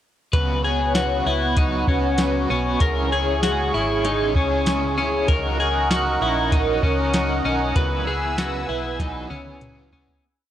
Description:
dream pop; 97 BPM; 4/4; straight; A4 = 440 Hz
crunchy overdriven guitar; accompaniment; 0.3-10.2 s; C#3 to B4; -28 LUFS; right 3 dB; tremolo, analog chorus
phased analog pad; sustained chords; 0.5-10.2 s; G#4 to E6; -25 LUFS; right 2 dB; phaser, chorus
clean electric guitar; arpeggios; 0.3-10.2 s; C#4 to B4; -24 LUFS; left 4 dB; analog chorus, analog delay
vintage muted fingered electric bass; bass; 0.3-10.2 s; G#1 to C#2; -27 LUFS; equal
soft vintage rhythm box; drums; 0.3-10.2 s; hi-hat, kick drum, snare drum, tambourine, toms; -21 LUFS; equal
light reverb; dry, gritty hardware recording, cassette tape; -19 LUFS; side -11 dB against mid
0.3-10.2 chorus
fade-out 7.8-10.2; drum fill 9.0-10.2
0.3 F#sus4/C#; 2.8 C#m; 5.3 D#m7; 7.8 Eadd9

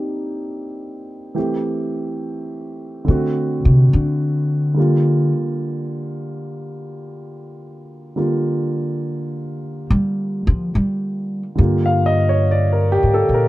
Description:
jazz ballad; 70 BPM; 4/4; swing 68% on 8ths; G minor; A4 = 441 Hz
warm grand piano; accompaniment; 0.0-13.5 s; D3 to F5; -21 LUFS; equal
upright bass; bass; 3.1-13.5 s; G2 to G3; -17 LUFS; equal
little or no reverb; dark, warm production; -17 LUFS; side -17 dB against mid
0.0-11.6 A section; 11.6-13.5 A section
upright bass solo 0.0-11.6
0.0 Ebmaj7; 1.4 Am7; 3.1 D7; 4.8 Gm7

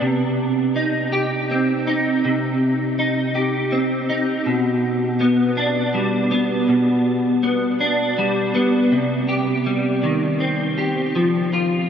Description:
rock; 54 BPM (dotted quarters); 6/8; straight; A4 = 440 Hz
clean electric guitar; solo; 0.0-11.9 s; B2 to G4; -17 LUFS; equal; ensemble chorus, tape echo
wet huge ambient reverb, RT60 8.2 s; dreamy mix soaked in reverb; -17 LUFS; side -8 dB against mid
0.0-8.9 A section; 8.9-11.9 B section
0.0 Cm; 4.5 G/B; 8.9 Cm; 11.2 N.C.

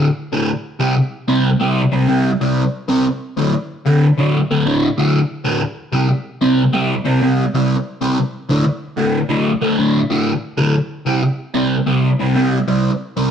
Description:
rock; 94 BPM; 4/4; straight; A4 = 439 Hz
fuzz guitar; solo; 0.0-13.3 s; D2 to C4; -14 LUFS; equal; distortion, phaser
moderate stone room reverb, RT60 1.1 s; rough rehearsal-room recording, tube saturation; -15 LUFS; side -8 dB against mid
0.0-13.3 A section
0.5 C5; 3.0 D5; 5.6 C5; 8.2 D5; 10.7 C5

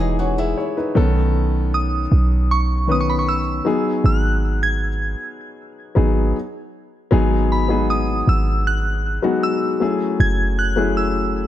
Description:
R&B; 78 BPM; 4/4; straight; A4 = 441 Hz
warm grand piano; accompaniment; 0.0-11.5 s; D#3 to F#5; -21 LUFS; left 3 dB
flamenco guitar; arpeggios; 0.0-0.9 s; B3 to G#4; -28 LUFS; equal; ping-pong delay
warm 808-style bass; bass; 0.0-11.5 s; E1 to B1; -19 LUFS; right 1 dB
glassy synth bell; melody; 1.7-11.5 s; B5 to G#6; -24 LUFS; right 2 dB; chorus, tremolo, ping-pong delay
studio reverb; dark, warm production; -16 LUFS; side -12 dB against mid
0.0-7.1 A section; 7.1-11.5 B section
stop 6.3-7.1
0.0 Emaj9; 1.0 B9; 3.7 G#m7; 9.8 F#m9

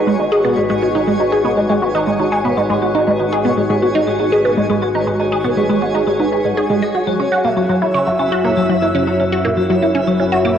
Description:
ambient, sequencer-driven space music; 120 BPM; 4/4; straight; G# minor; A4 = 440 Hz
sweeping resonant pad; sustained chords; 0.0-10.6 s; F#3 to B4; -24 LUFS; right 2 dB; chorus, cassette tape
vibraphone with hard mallets; arpeggios; 0.0-10.6 s; F#4 to G#5; -20 LUFS; left 3 dB; auto-pan, low-pass filter, cassette tape, tape echo
resonant blip pluck; riff; 0.0-10.5 s; F#3 to D#5; -16 LUFS; equal; phaser, cassette tape, tape echo
analog drone; bass; 0.1-10.6 s; F#1 to G#1; -30 LUFS; equal; chorus
twinkling granular texture; texture; 0.0-10.6 s; E4 to E5; -22 LUFS; right 1 dB; built-in reverb, cassette tape
wet spring reverb, RT60 2.8 s; home recording on cassette; -13 LUFS; side -8 dB against mid
0.0-10.6 A section
filter sweep on synth arpeggio sound 0.0-10.6
0.0 G#m7; 7.1 F#7

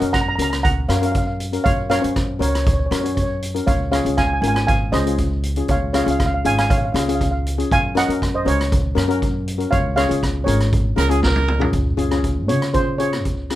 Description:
calypso; 119 BPM; 4/4; straight; Db major; A4 = 440 Hz
steel pan; melody; 0.0-13.6 s; Bb4 to Bb5; -22 LUFS; right 2 dB
steel pan; accompaniment; 0.0-13.6 s; Db4 to Db5; -23 LUFS; left 3 dB
upright bass; bass; 0.0-13.6 s; Ab1 to Db3; -22 LUFS; equal
street-band drum kit; drums; 0.0-13.6 s; hi-hat, kick drum, rim click, snare drum, toms; -23 LUFS; equal
clear trumpet; second line; 11.0-11.7 s; Ab4 to Bb4; -22 LUFS; right 5 dB
light reverb; minimal, uncompressed stereo recording; -17 LUFS; side -14 dB against mid
0.0-11.7 A section; 11.7-13.6 B section
drum fill 11.2-11.7; steel pan solo 11.7-13.6
0.0 Gbmaj7; 3.7 Db; 7.7 Gb; 9.7 Db6; 11.7 Db

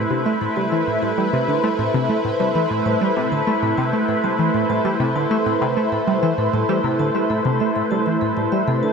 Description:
ambient, sequencer-driven space music; 98 BPM; 4/4; straight; A minor; A4 = 437 Hz
lush unison pad; sustained chords; 0.0-8.9 s; A3 to C5; -19 LUFS; equal; chorus, phaser
vibraphone with medium hard mallets; arpeggios; 0.0-8.9 s; A4 to A5; -32 LUFS; moving between left 1 dB and right 6 dB; auto-pan, analog delay
tight sequenced synth; riff; 0.0-8.9 s; A2 to A3; -22 LUFS; equal; chorus, analog delay
wet huge ambient reverb, RT60 9.2 s; -17 LUFS; side -5 dB against mid
0.0-8.9 A section
0.0 Am

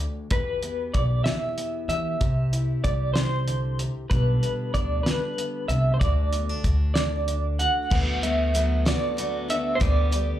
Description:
indie folk with a building arrangement; 63 BPM (dotted quarters); 6/8; straight; G major; A4 = 438 Hz
electric guitar through a small old amp; melody; 0.0-10.4 s; B4 to F#5; -28 LUFS; right 1 dB; tremolo, slapback echo
fingerpicked steel-string acoustic guitar; accompaniment; 0.0-10.4 s; D2 to G4; -32 LUFS; left 1 dB; slapback echo
upright bass; bass; 0.0-10.3 s; B1 to E3; -25 LUFS; equal
cloth-damped thuddy drum kit; drums; 0.3-10.3 s; crash cymbal, hi-hat, kick drum, snare drum; -27 LUFS; equal
picked steel-string acoustic guitar; accompaniment; 7.9-10.4 s; D3 to G4; -32 LUFS; left 4 dB; slapback echo
small room ambience; live gig heard through the venue's PA, club reverb; -22 LUFS; side -12 dB against mid
0.0-7.9 A section; 7.9-10.4 B section
0.3 Em; 2.2 C; 4.1 G/B; 6.0 D6; 9.8 G/D

